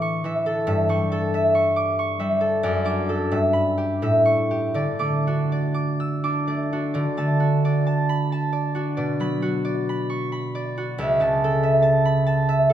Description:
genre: classical, solo harp piece.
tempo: 78-93 BPM.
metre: 3/4.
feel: rubato.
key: D major.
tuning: A4 = 440 Hz.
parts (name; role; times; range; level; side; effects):
concert harp; solo; 0.0-12.7 s; C#2 to E6; -20 LUFS; equal; none.
room: wet recital hall reverb, RT60 1.4 s.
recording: none.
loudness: -20 LUFS.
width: side -10 dB against mid.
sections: 0.0-7.0 A section; 7.0-12.7 A section.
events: none.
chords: 0.0 A; 0.7 A7/G; 2.7 D/F#; 3.3 Em/G; 4.0 A7; 4.8 D; 9.0 Bm; 11.0 A/C#.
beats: 0.05 | 0.70 1.35 2.01 | 2.66 3.34 4.04 | 4.78 5.53 6.25 | 6.97 7.64 8.32 | 8.99 9.65 10.33 | 10.98 11.63 12.28.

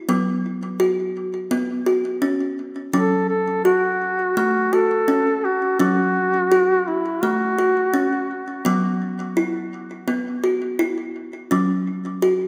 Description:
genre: world meditative, meditative tuned percussion.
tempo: 84 BPM.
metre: 4/4.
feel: straight.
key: F# minor pentatonic.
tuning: A4 = 441 Hz.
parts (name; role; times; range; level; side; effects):
kalimba; arpeggios; 0.0-12.5 s; F#3 to F#4; -23 LUFS; equal; delay.
warm duduk; melody; 2.9-8.3 s; E4 to A4; -23 LUFS; equal; delay.
room: wet concert hall reverb, RT60 1.8 s, small room ambience.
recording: none.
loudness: -21 LUFS.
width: mono.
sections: 0.0-12.5 A section.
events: none.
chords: 0.1 B5/F#; 2.9 F#m; 8.7 E5/F#; 11.5 F#5.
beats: | 0.09 0.80 1.52 2.23 | 2.94 3.66 4.37 5.08 | 5.80 6.51 7.23 7.94 | 8.65 9.37 10.08 10.80 | 11.51 12.23.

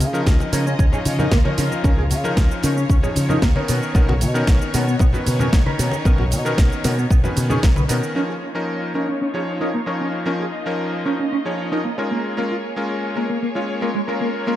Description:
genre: nu-disco, nu disco.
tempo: 114 BPM.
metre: 4/4.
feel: straight.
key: Db mixolydian.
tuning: A4 = 441 Hz.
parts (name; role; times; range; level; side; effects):
rich studio string section; sustained chords; 0.0-14.6 s; Bb3 to Eb5; -30 LUFS; left 1 dB; sidechain pumping, low-pass filter.
fingered electric bass with an envelope filter; bass; 0.0-8.0 s; Cb2 to Db3; -21 LUFS; equal; none.
house drum kit; drums; 0.0-14.6 s; hi-hat, shaker, snare drum; -28 LUFS; right 1 dB; low-pass filter on snare, low-pass filter on hats, low-pass filter on perc, low-pass filter on room, dub echo.
congas; percussion; 0.0-7.9 s; none; -27 LUFS; left 2 dB; dub echo.
bright electric grand piano; accompaniment; 0.1-14.6 s; Eb3 to Bb5; -24 LUFS; left 1 dB; sidechain pumping, dub echo.
electronic kick drum; drums; 0.3-7.7 s; none; -16 LUFS; equal; none.
mellow electric guitar; riff; 0.5-14.5 s; Ab3 to Db5; -25 LUFS; right 1 dB; lush chorus, low-pass filter, dub echo.
room: light reverb, digital ambience.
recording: echo-heavy mix.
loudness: -17 LUFS.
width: side -13 dB against mid.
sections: 0.0-8.2 A section; 8.2-14.6 B section.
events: filter sweep on clean electric guitar 8.2-14.6.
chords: 0.0 Db69; 3.7 Cbmaj9; 8.2 Db69; 12.1 Bbm7.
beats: 0.26 0.79 1.32 | 1.84 2.37 2.90 3.42 | 3.95 4.47 5.00 5.53 | 6.05 6.58 7.11 7.63 | 8.16 8.69 9.21 9.74 | 10.26 10.79 11.32 11.84 | 12.37 12.89 13.42 13.95 | 14.47.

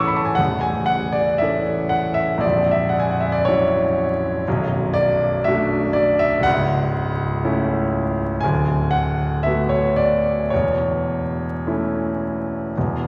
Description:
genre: classical, romantic nocturne for solo piano.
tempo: 52-62 BPM.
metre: 4/4.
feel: rubato.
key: A major.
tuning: A4 = 440 Hz.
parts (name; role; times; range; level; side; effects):
clear grand piano; solo; 0.0-13.1 s; A0 to E6; -20 LUFS; equal; none.
room: wet concert hall reverb, RT60 2.5 s.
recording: vinyl crackle.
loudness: -20 LUFS.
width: mono.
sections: 0.0-13.1 A section.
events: none.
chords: 0.0 A; 2.4 F#7/A#; 4.5 Bm7; 6.5 A/C#; 8.4 Bm7/D; 10.5 A/E.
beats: 0.39 1.41 | 2.44 3.47 4.46 5.46 | 6.45 7.43 8.42 9.45 | 10.53 11.66 12.76.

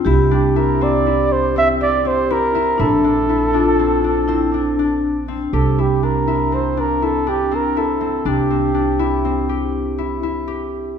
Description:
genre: contemporary instrumental, chamber music in an uneven meter.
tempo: 242 BPM (eighths).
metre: 11/8.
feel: straight.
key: unclear.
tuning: A4 = 440 Hz.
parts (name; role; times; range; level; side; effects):
vibraphone with medium mallets; second line; 0.0-5.2 s; D4 to G4; -20 LUFS; left 4 dB; none.
concert harp; arpeggios; 0.0-11.0 s; C4 to G4; -20 LUFS; left 5 dB; none.
upright bass; bass; 0.1-10.9 s; Bb1 to C2; -22 LUFS; right 4 dB; none.
mellow flugelhorn; melody; 0.3-9.8 s; G4 to E5; -19 LUFS; right 4 dB; none.
room: moderate concert hall reverb, RT60 2.0 s.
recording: minimal, uncompressed stereo recording.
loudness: -15 LUFS.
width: side -7 dB against mid.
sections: 0.0-5.5 A section; 5.5-11.0 B section.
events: none.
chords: 0.1 C9; 2.8 Bbmaj7; 5.5 C.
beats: | 0.06 0.31 0.56 0.81 1.06 1.30 1.55 1.80 2.05 2.30 2.55 | 2.79 3.04 3.29 3.54 3.79 4.04 4.29 4.53 4.78 5.03 5.28 | 5.53 5.78 6.03 6.27 6.52 6.77 7.02 7.27 7.52 7.76 8.01 | 8.26 8.51 8.76 9.01 9.26 9.50 9.75 10.00 10.25 10.50 10.74.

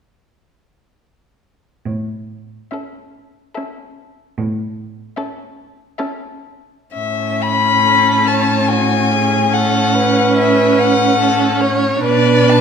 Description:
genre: classical, slow romantic movement for string quartet.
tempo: 71 BPM.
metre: 3/4.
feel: uneven beats, rubato.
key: A major.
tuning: A4 = 436 Hz.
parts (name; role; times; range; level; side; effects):
rich cello; bass; 1.9-12.6 s; A2 to B2; -19 LUFS; right 2 dB; none.
rich violin; melody; 2.7-12.6 s; D5 to B5; -16 LUFS; left 5 dB; none.
rich violin; second line; 2.7-12.6 s; F#4 to C#5; -19 LUFS; equal; none.
rich viola; accompaniment; 2.7-12.6 s; C#4 to D4; -19 LUFS; right 4 dB; none.
room: wet scoring stage reverb, RT60 1.5 s.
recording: minimal, uncompressed stereo recording.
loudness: -12 LUFS.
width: side -7 dB against mid.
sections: 1.9-6.9 A section; 6.9-12.6 B section.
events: none.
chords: 1.9 A; 12.0 Bm7.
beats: | 1.86 2.72 3.57 | 4.38 5.17 5.99 | 6.94 7.87 8.70 | 9.53 10.37 11.19 | 12.04.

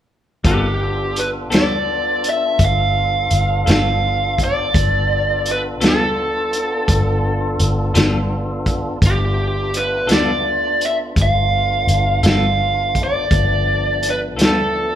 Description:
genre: slow blues.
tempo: 56 BPM (dotted quarters).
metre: 12/8.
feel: straight.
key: G mixolydian.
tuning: A4 = 441 Hz.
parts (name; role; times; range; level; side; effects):
clean electric guitar; accompaniment; 0.4-14.6 s; G3 to A4; -23 LUFS; left 2 dB; tremolo.
vintage muted fingered electric bass; bass; 0.4-15.0 s; G1 to D2; -20 LUFS; equal; none.
vintage drum kit; drums; 0.4-14.6 s; hi-hat, kick drum, snare drum; -19 LUFS; equal; none.
lead guitar through a small cranked amp; melody; 0.5-15.0 s; G4 to F5; -18 LUFS; right 1 dB; overdrive.
tonewheel organ; sustained chords; 0.5-15.0 s; F3 to F#5; -27 LUFS; equal; slow rotary speaker.
room: moderate large studio reverb, RT60 1.4 s.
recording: band playing live in one room.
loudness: -15 LUFS.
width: side -10 dB against mid.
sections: 0.4-15.0 A section.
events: none.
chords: 0.4 G9.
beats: | 0.45 1.52 2.59 3.67 | 4.74 5.81 6.88 7.95 | 9.02 10.09 11.16 12.24 | 13.31 14.38.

